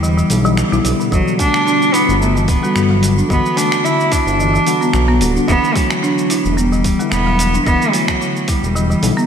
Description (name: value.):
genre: organic downtempo.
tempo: 110 BPM.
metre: 4/4.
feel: swing 54% on 16ths.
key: unclear.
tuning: A4 = 436 Hz.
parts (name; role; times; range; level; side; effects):
rich cello; melody; 0.0-9.3 s; F#3 to E4; -17 LUFS; right 1 dB; diffuse ambient delay.
mellow tine electric piano; accompaniment; 0.0-9.3 s; D3 to F#4; -21 LUFS; left 4 dB; medium stereo tremolo, sidechain pumping, tape echo.
folk marimba with medium hard mallets; arpeggios; 0.0-9.2 s; B2 to E4; -19 LUFS; right 1 dB; tape echo.
smooth synth bass; bass; 0.0-9.1 s; D1 to B1; -17 LUFS; equal; sidechain pumping.
dusty soul sampler-style drum kit; drums; 0.0-9.3 s; finger snaps, hi-hat, shaker; -24 LUFS; right 1 dB; none.
electronic kick drum; drums; 1.1-8.6 s; none; -18 LUFS; equal; none.
room: moderate lush hall reverb, RT60 2.1 s.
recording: dreamy mix soaked in reverb.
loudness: -12 LUFS.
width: side -7 dB against mid.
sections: 0.0-9.3 A section.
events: none.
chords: 0.0 Gmaj7.